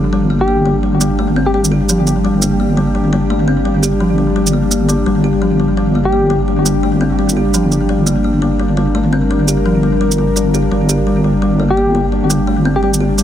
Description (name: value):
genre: half-time drum and bass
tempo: 170 BPM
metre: 4/4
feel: swing 60% on 16ths, half-time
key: G minor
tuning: A4 = 442 Hz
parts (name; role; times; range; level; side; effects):
- bowed-like drone; sustained chords; 0.0-13.2 s; G3 to Bb4; -18 LUFS; left 2 dB; built-in reverb
- kalimba; arpeggios; 0.0-13.2 s; F3 to G4; -17 LUFS; left 1 dB; low-pass filter, tape echo
- deep soft wobble bass; bass; 0.0-13.2 s; G1; -16 LUFS; right 1 dB; chorus, tube saturation
- soft struck synth lead; melody; 0.4-1.6, 6.1-6.4, 11.7-12.9 s; G4; -19 LUFS; left 2 dB; chorus, ping-pong delay
- shaker; drums; 1.0-13.2 s; none; -18 LUFS; right 4 dB; none
room: light reverb, digital ambience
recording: heavily compressed radio sound, multiband compression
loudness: -12 LUFS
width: side -10 dB against mid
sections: 0.0-13.2 A section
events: none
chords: 0.0 Gm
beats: 0.13 0.48 | 0.83 1.19 1.54 1.89 | 2.24 2.60 2.95 3.30 | 3.66 4.01 4.36 4.71 | 5.07 5.42 5.77 6.13 | 6.48 6.83 7.18 7.54 | 7.89 8.24 8.60 8.95 | 9.30 9.66 10.01 10.36 | 10.71 11.07 11.42 11.77 | 12.13 12.48 12.83 13.19